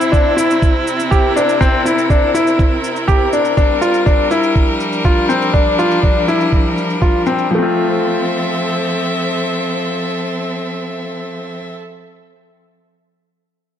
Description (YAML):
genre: piano and strings electronica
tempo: 122 BPM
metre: 4/4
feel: straight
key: F major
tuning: A4 = 440 Hz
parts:
  - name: rich string quartet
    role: sustained chords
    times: 0.0-11.8 s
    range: C3 to E5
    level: -18 LUFS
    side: equal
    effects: none
  - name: clear concert grand piano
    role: riff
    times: 0.0-11.7 s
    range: F3 to G4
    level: -16 LUFS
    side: left 2 dB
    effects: digital delay
  - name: shaker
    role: drums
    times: 0.0-7.5 s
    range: none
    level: -33 LUFS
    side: right 3 dB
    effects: overdrive, low-pass filter on perc, low-pass filter on room
  - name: electronic kick drum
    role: drums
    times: 0.1-7.1 s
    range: none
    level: -14 LUFS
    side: right 1 dB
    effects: none
room: light reverb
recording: none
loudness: -13 LUFS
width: side -9 dB against mid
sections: 0.0-7.5 A section; 7.5-11.4 B section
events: none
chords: 0.0 C7; 3.6 Gm7; 7.5 Fmaj7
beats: 0.13 0.62 1.11 | 1.61 2.10 2.59 3.08 | 3.57 4.07 4.56 5.05 | 5.54 6.03 6.53 7.02 | 7.51 8.00 8.49 8.98 | 9.48 9.97 10.46 10.95